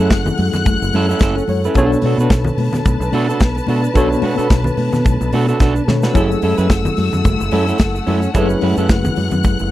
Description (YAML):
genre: disco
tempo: 109 BPM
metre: 4/4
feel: swing 56% on 16ths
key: F# minor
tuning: A4 = 437 Hz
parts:
  - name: barky tine electric piano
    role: accompaniment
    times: 0.0-9.7 s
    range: B2 to C#5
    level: -20 LUFS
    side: left 2 dB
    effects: overdrive, fast stereo tremolo
  - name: electric guitar at the edge of break-up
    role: accompaniment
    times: 0.0-9.6 s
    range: C#4 to B4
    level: -20 LUFS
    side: right 5 dB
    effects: none
  - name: clear studio string section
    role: sustained chords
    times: 0.0-9.7 s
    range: A3 to F#6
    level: -24 LUFS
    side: left 2 dB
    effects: none
  - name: fingered electric bass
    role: bass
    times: 0.0-9.7 s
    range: F#1 to B2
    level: -19 LUFS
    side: equal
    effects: none
  - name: modern studio drum kit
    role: drums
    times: 0.1-9.6 s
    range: hi-hat, kick drum, snare drum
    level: -14 LUFS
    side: equal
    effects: none
  - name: egg shaker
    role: percussion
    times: 0.1-9.7 s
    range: none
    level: -41 LUFS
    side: right 11 dB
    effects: none
  - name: congas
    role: percussion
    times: 0.3-9.6 s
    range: none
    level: -24 LUFS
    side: left 3 dB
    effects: none
room: little or no reverb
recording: dry, close 1970s-style studio recording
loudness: -13 LUFS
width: side -14 dB against mid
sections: 0.0-9.7 A section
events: drum fill 5.6-6.2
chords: 0.0 F#m7; 1.8 Bm7; 6.2 F#m7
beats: 0.10 0.66 1.21 | 1.75 2.31 2.85 3.40 | 3.96 4.50 5.05 5.60 | 6.15 6.70 7.25 7.80 | 8.35 8.90 9.45